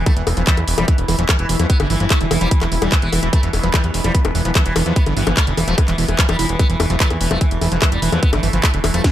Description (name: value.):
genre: psychedelic trance.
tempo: 147 BPM.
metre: 4/4.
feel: straight.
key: E phrygian.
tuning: A4 = 438 Hz.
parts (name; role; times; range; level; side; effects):
sitar; melody; 0.0-9.1 s; B2 to B3; -26 LUFS; right 1 dB; phaser, sidechain pumping, digital delay.
bubbling stepped-filter texture; sustained chords; 0.0-9.1 s; E3 to E4; -26 LUFS; equal; chorus, built-in reverb, sidechain pumping.
fat analog bass; bass; 0.0-9.0 s; E1 to E2; -20 LUFS; equal; none.
screaming distorted acid line; riff; 0.1-9.0 s; D3 to E4; -24 LUFS; right 1 dB; distortion, chorus, auto-pan, sidechain pumping, digital delay.
electronic kick drum; drums; 0.1-9.1 s; none; -15 LUFS; equal; none.
garage drum kit; drums; 0.1-9.1 s; bongos, handclaps, hi-hat, snare drum; -21 LUFS; left 2 dB; none.
vowel-sweep wobble bass; second line; 3.6-4.4 s; G3 to B3; -36 LUFS; left 5 dB; none.
room: little or no reverb.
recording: none.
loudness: -14 LUFS.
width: side -12 dB against mid.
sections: 0.0-9.1 A section.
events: none.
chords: 0.0 E5.